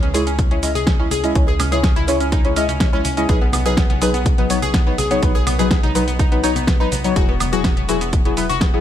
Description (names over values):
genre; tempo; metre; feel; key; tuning
progressive house; 124 BPM; 4/4; straight; unclear; A4 = 442 Hz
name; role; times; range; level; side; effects
glassy wavetable pluck; arpeggios; 0.0-8.8 s; B3 to G#4; -23 LUFS; equal; chorus, sidechain pumping, dub echo
tight sequencer bass; bass; 0.0-8.8 s; E1 to C#2; -23 LUFS; equal; tube saturation, sidechain pumping
pop drum kit; drums; 0.0-8.7 s; hi-hat, shaker, snare drum, woodblock; -24 LUFS; right 1 dB; small room ambience, sidechain pumping on hats, sidechain pumping on perc
congas, cowbell and woodblock; percussion; 0.0-8.6 s; none; -30 LUFS; left 4 dB; sidechain pumping on perc
deep mellow chord stab; stabs; 0.1-8.8 s; F#3 to D#5; -21 LUFS; left 3 dB; chorus, sidechain pumping, dub echo
electronic kick drum; drums; 0.4-8.7 s; none; -17 LUFS; equal; small room ambience
room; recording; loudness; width
light reverb; none; -15 LUFS; side -10 dB against mid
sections
0.0-8.8 A section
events
none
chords
0.0 C#m; 3.3 B; 7.2 Eadd9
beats
0.39 0.87 | 1.35 1.84 2.32 2.81 | 3.29 3.77 4.26 4.74 | 5.23 5.71 6.19 6.68 | 7.16 7.64 8.13 8.61